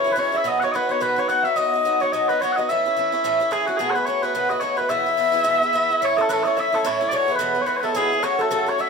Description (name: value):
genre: celtic folk, Celtic reel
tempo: 216 BPM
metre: 4/4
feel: swing 58% on 8ths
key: E major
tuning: A4 = 441 Hz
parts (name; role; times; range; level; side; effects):
- mellow small bagpipes; melody; 0.0-8.9 s; F#4 to F#5; -21 LUFS; left 2 dB; none
- concert harp; second line; 0.0-8.9 s; F#4 to F#5; -29 LUFS; right 4 dB; none
- wooden flute; second line; 0.0-8.9 s; F#4 to F#5; -26 LUFS; left 6 dB; none
- picked swing-style acoustic guitar; accompaniment; 0.0-8.9 s; E2 to F#4; -25 LUFS; right 5 dB; none
room: moderate studio reverb, RT60 0.6 s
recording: minimal, uncompressed stereo recording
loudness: -18 LUFS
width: side -5 dB against mid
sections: 0.0-6.0 A section; 6.0-8.9 B section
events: none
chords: 0.5 B; 2.7 A; 3.8 B7; 4.9 E; 6.0 A; 7.1 E; 8.2 F#m